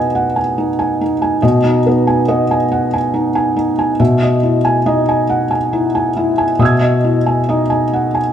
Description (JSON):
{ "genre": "neoclassical minimalist piano", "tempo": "69 BPM", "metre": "3/4", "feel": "rubato", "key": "unclear", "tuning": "A4 = 440 Hz", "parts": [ { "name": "felt-muted upright piano", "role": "solo", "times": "0.0-8.3 s", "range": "B2 to G#6", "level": "-12 LUFS", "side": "equal", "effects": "none" } ], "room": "wet stone room reverb, RT60 1.5 s", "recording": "band playing live in one room", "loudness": "-12 LUFS", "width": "side -9 dB against mid", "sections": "0.0-8.3 A section", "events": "none", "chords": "0.0 G#m/B; 4.0 Emaj7/B", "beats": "0.56 | 1.43 2.29 3.15 | 4.00 4.86 5.74 | 6.60 7.48" }